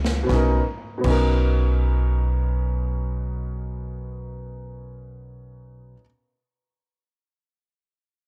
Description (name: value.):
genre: jazz, big band swing.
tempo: free time.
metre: none.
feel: none.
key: B major.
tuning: A4 = 443 Hz.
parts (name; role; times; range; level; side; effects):
upright bass; bass; 0.0-5.9 s; B1 to C#2; -26 LUFS; equal; transformer saturation.
swinging big-band drum kit; drums; 0.0-1.3 s; crash cymbal, kick drum, snare drum; -32 LUFS; equal; cassette tape.
warm grand piano; accompaniment; 0.2-6.0 s; B2 to A#4; -29 LUFS; equal; cassette tape.
room: small room ambience.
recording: home recording on cassette.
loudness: -23 LUFS.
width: mono.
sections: 0.3-6.3 A section.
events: drum fill 0.0.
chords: 0.3 Bmaj9.